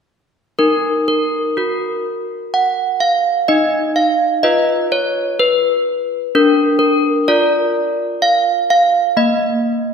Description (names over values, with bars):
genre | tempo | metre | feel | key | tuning
classical, tune for handbells | 63 BPM | 3/4 | straight | Eb minor | A4 = 440 Hz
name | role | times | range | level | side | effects
desk bells | solo | 0.6-9.9 s | Bb3 to Gb5 | -13 LUFS | equal | none
room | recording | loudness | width
wet scoring stage reverb, RT60 1.9 s | minimal, uncompressed stereo recording | -13 LUFS | side -6 dB against mid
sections
0.6-9.9 A section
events
none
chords
0.6 Ebm; 3.5 Db9/Eb; 6.3 Bb/D; 9.2 Eb5/Bb